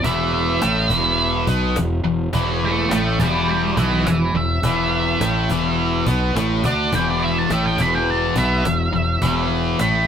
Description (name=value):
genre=blues rock power trio and southern rock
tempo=105 BPM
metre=4/4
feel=straight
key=E minor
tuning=A4 = 444 Hz
part: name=octave-fuzz lead guitar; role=melody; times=0.0-10.1 s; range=B4 to B5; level=-22 LUFS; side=right 2 dB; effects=wah, distortion
part: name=tight distorted guitar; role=riff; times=0.0-10.1 s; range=E2 to D4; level=-20 LUFS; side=left 1 dB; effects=distortion
part: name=fuzz fingered electric bass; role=bass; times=0.0-10.1 s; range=E1 to D2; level=-22 LUFS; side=equal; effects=overdrive
part: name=cajon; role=drums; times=0.0-9.9 s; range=none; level=-25 LUFS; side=equal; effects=none
room=moderate studio ambience, RT60 0.5 s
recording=band playing live in one room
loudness=-17 LUFS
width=side -8 dB against mid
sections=0.0-10.1 A section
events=none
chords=0.0 E5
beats=| 0.04 0.62 1.19 1.76 | 2.33 2.91 3.48 4.05 | 4.63 5.20 5.77 6.35 | 6.92 7.49 8.07 8.64 | 9.21 9.79